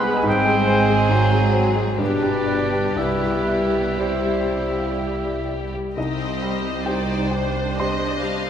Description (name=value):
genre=classical, romantic movement for piano and orchestra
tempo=58-71 BPM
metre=3/4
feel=rubato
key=C major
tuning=A4 = 440 Hz
part: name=clear grand piano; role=melody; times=0.0-8.5 s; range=C2 to C6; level=-24 LUFS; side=left 1 dB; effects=none
part: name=rich studio violin section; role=melody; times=0.0-8.5 s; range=G4 to Eb5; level=-33 LUFS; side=left 2 dB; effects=none
part: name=silver concert flute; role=second line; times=0.0-5.0 s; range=B4 to B5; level=-25 LUFS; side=left 1 dB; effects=none
part: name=warm clarinet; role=second line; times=0.0-5.6 s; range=B3 to E4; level=-30 LUFS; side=left 3 dB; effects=none
part: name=warm studio violin section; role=second line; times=0.0-8.5 s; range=B3 to F5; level=-31 LUFS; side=left 4 dB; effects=none
part: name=clear bassoon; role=accompaniment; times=0.0-5.6 s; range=Gb3 to Ab3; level=-30 LUFS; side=right 3 dB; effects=none
part: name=warm studio viola section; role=accompaniment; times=0.0-8.5 s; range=Gb3 to C5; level=-29 LUFS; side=right 1 dB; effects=none
part: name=dark French horn section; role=sustained chords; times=0.0-5.6 s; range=G3 to Ab4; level=-28 LUFS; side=left 4 dB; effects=none
part: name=bright trumpet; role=stabs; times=0.0-5.6 s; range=B4 to E5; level=-27 LUFS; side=right 3 dB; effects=none
part: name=rich studio double bass section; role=bass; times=0.0-8.5 s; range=G1 to C2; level=-28 LUFS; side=right 3 dB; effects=none
part: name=warm studio cello section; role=bass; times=0.0-8.5 s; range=C2 to B3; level=-30 LUFS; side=right 3 dB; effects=none
room=wet concert hall reverb, RT60 2.5 s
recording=none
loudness=-18 LUFS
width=side -8 dB against mid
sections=0.0-6.0 A section; 6.0-8.5 B section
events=none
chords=0.3 Ab; 1.1 Ab7; 2.0 G; 3.0 C; 6.0 Cm